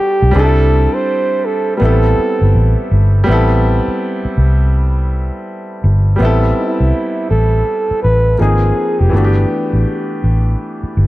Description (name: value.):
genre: R&B, neo-soul.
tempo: 82 BPM.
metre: 4/4.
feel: swing 63% on 16ths.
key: A minor.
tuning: A4 = 440 Hz.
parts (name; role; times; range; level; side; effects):
breathy flugelhorn; melody; 0.0-9.7 s; E4 to C5; -18 LUFS; right 1 dB; tape echo.
clear baby grand piano; accompaniment; 0.0-11.1 s; E3 to F#5; -18 LUFS; equal; none.
vintage muted fingered electric bass; bass; 0.2-11.1 s; E#1 to C2; -12 LUFS; equal; none.
room: small room ambience.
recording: echo-heavy mix.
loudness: -11 LUFS.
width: side -17 dB against mid.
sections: 0.0-3.3 A section; 3.3-6.2 B section; 6.2-11.1 C section.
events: none.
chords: 0.3 C69; 1.8 Am9; 8.4 G#69; 9.1 G69.